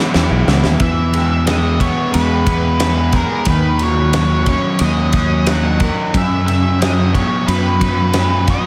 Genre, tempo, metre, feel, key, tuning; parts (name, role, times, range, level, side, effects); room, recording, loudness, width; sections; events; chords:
rock, shoegaze and dream pop; 90 BPM; 4/4; straight; E lydian; A4 = 440 Hz
overdriven semi-hollow guitar; riff; 0.0-8.7 s; F#2 to A#4; -20 LUFS; equal; subtle chorus
big rock drum kit; drums; 0.1-8.6 s; kick drum, ride cymbal, snare drum; -22 LUFS; equal
fingered electric bass; bass; 0.2-8.6 s; B1 to F#2; -19 LUFS; equal
octave-fuzz lead guitar; melody; 0.8-8.7 s; A#4 to F#5; -24 LUFS; equal; distortion, analog delay
moderate cathedral reverb, RT60 6.0 s; dreamy mix soaked in reverb; -15 LUFS; mono
0.8-8.7 A section
drum fill 0.0-0.8
0.0 Emaj7; 0.8 E; 3.5 D#m7; 6.1 F#sus4